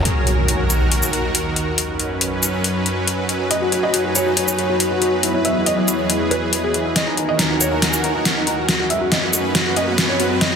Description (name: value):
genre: heavy wobble dubstep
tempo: 139 BPM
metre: 4/4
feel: half-time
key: Eb phrygian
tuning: A4 = 439 Hz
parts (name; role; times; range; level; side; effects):
- granular cloud pad; texture; 0.0-10.6 s; Gb3 to Cb6; -24 LUFS; equal; built-in reverb
- supersaw pad; sustained chords; 0.1-10.6 s; Eb2 to Cb5; -22 LUFS; right 1 dB; low-pass filter
- dubstep drum kit; drums; 0.1-10.5 s; hi-hat, shaker, snare drum; -19 LUFS; left 1 dB; overdrive
- impact and riser; sound effects; 0.1-1.8, 8.1-10.6 s; none; -23 LUFS; equal; none
- felt-muted upright piano; melody; 3.5-10.6 s; Eb4 to E5; -22 LUFS; equal; dub echo
room: moderate lush hall reverb, RT60 1.9 s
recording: dense, heavily limited modern master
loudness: -16 LUFS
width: side -6 dB against mid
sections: 0.1-7.0 A section; 7.0-10.6 B section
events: impact 0.1-1.8; build-up 7.0-10.6; drum fill 7.0-10.6; riser 8.1-10.6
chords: 0.1 Ebm; 1.8 Gbsus4; 5.2 E; 7.0 Ebm; 8.7 Gbsus4